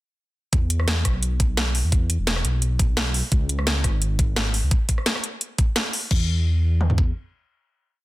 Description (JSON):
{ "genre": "liquid drum and bass", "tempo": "172 BPM", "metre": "4/4", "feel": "swing 53% on 16ths", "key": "E major", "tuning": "A4 = 440 Hz", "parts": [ { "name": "dark detuned saw bass", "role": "bass", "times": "0.5-7.1 s", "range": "E1 to E2", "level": "-22 LUFS", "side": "equal", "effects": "none" }, { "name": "drum and bass drum kit", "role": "drums", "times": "0.5-7.1 s", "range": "kick drum, toms", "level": "-21 LUFS", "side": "equal", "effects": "none" }, { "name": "drum and bass drum kit", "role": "drums", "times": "0.5-6.2 s", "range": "crash cymbal, hi-hat, rim click, snare drum", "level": "-24 LUFS", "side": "equal", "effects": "none" } ], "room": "little or no reverb", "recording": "dense, heavily limited modern master", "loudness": "-20 LUFS", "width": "side -18 dB against mid", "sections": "0.5-6.1 drop; 6.1-8.0 final note", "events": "drop 0.5-6.1", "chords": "none" }